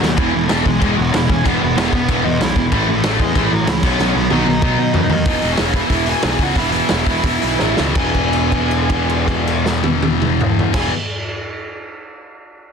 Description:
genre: punk rock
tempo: 160-189 BPM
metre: 4/4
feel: straight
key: E major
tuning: A4 = 438 Hz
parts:
  - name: nasal lead guitar with a parked wah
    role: melody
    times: 0.0-10.9 s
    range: E3 to G#5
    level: -22 LUFS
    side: right 1 dB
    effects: overdrive, ping-pong delay
  - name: fuzz guitar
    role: riff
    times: 0.0-5.1 s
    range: A2 to E4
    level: -22 LUFS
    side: right 1 dB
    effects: distortion
  - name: tight distorted guitar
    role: riff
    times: 0.0-10.9 s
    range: E2 to B3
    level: -21 LUFS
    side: left 15 dB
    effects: distortion
  - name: fuzz picked electric bass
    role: bass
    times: 0.0-10.9 s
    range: E1 to B2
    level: -21 LUFS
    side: equal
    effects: overdrive
  - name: raw garage drum kit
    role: drums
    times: 0.0-10.8 s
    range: crash cymbal, hi-hat, kick drum, snare drum, toms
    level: -20 LUFS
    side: equal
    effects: none
  - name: distorted electric guitar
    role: riff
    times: 0.2-10.9 s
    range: E2 to B3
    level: -22 LUFS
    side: right 15 dB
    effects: distortion
room: light reverb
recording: dense, heavily limited modern master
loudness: -14 LUFS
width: side -6 dB against mid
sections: 0.0-5.3 A section; 5.3-8.0 B section; 8.0-11.0 C section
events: drum fill 0.0, 4.0-5.3, 7.6-8.0; slowing down 5.3-8.0; held note 8.0-10.7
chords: 0.2 E; 2.7 A; 3.8 B; 5.3 E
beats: | 0.19 0.50 0.82 1.14 | 1.46 1.77 2.09 2.41 | 2.72 3.04 3.36 3.68 | 3.99 4.31 4.63 4.94 | 5.26 5.58 5.90 6.23 | 6.56 6.89 7.24 7.60 | 7.97 8.34 8.72 9.09 | 9.46 9.84 10.21 10.59

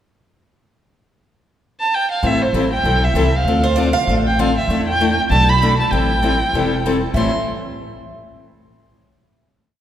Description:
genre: acoustic string swing (jazz manouche)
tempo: 195 BPM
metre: 4/4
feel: swing 58% on 8ths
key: A minor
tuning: A4 = 445 Hz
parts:
  - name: warm violin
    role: melody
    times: 1.8-7.3 s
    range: C5 to C6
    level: -19 LUFS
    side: right 2 dB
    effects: none
  - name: picked steel-string acoustic guitar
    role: accompaniment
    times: 2.2-7.3 s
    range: A2 to A4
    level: -20 LUFS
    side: left 3 dB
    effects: none
  - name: upright bass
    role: bass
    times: 2.2-7.3 s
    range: E1 to E2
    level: -19 LUFS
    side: equal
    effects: none
  - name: picked steel-string acoustic guitar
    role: second line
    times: 3.6-4.1, 7.1-7.3 s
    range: C5 to F5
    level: -23 LUFS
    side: right 4 dB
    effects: none
room: wet concert hall reverb, RT60 2.3 s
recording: recorded in a church or concert hall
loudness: -14 LUFS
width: side -10 dB against mid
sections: 1.0-2.2 pickup bar; 2.2-7.2 A section; 7.2-8.4 final chord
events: none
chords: 1.0 N.C.; 2.2 Am7; 3.5 Dm7; 4.7 E7sus4; 5.9 Am7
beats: | 0.99 1.29 1.60 1.91 | 2.22 2.53 2.84 3.15 | 3.45 3.76 4.07 4.38 | 4.69 4.99 5.30 5.61 | 5.92 6.23 6.54 6.84 | 7.15

